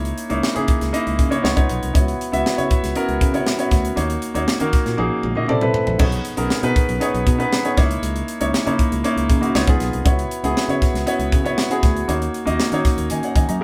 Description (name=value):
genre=polished 1980s jazz-funk pop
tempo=118 BPM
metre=4/4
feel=straight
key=C# dorian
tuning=A4 = 440 Hz
part: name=warm grand piano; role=accompaniment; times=0.0-13.6 s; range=A#3 to A#5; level=-23 LUFS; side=equal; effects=none
part: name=fingered electric bass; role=bass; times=0.0-13.6 s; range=A#1 to D#3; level=-27 LUFS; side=equal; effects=none
part: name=crisp fusion drum kit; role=drums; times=0.1-13.6 s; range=crash cymbal, hi-hat, kick drum, snare drum, toms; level=-22 LUFS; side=equal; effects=none
room=moderate small room reverb, RT60 0.5 s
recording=band playing live in one room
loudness=-19 LUFS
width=mono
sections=0.0-13.6 A section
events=drum fill 5.0-6.0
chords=0.0 C#m69; 1.4 C#9; 1.9 F#7sus4/C#; 4.0 D#m7; 5.5 C69; 6.0 B69; 7.8 C#m69; 9.6 C#9; 10.1 F#7sus4/C#; 12.1 D#m7